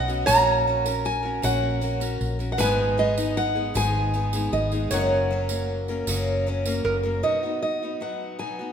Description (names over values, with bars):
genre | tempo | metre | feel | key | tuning
acoustic folk duo or small band | 52 BPM (dotted quarters) | 6/8 | straight | B major | A4 = 440 Hz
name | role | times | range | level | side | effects
picked steel-string acoustic guitar | melody | 0.0-8.7 s | D#5 to A#5 | -25 LUFS | right 1 dB | none
metal-body resonator slide guitar | second line | 0.0-7.0 s | A#4 to D#5 | -28 LUFS | right 3 dB | none
picked steel-string acoustic guitar | accompaniment | 0.0-8.7 s | F#2 to A#4 | -28 LUFS | left 2 dB | none
hollow-body short-scale fingered electric bass | bass | 0.0-7.2 s | F#1 to B1 | -27 LUFS | equal | none
tambourine | percussion | 0.1-6.8 s | none | -36 LUFS | right 6 dB | none
room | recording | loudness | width
wet scoring stage reverb, RT60 1.6 s | minimal, uncompressed stereo recording | -22 LUFS | side -8 dB against mid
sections
0.0-7.2 A section; 7.2-8.7 B section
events
none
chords
0.3 F#/A#; 2.6 G#m; 4.9 F#; 7.2 B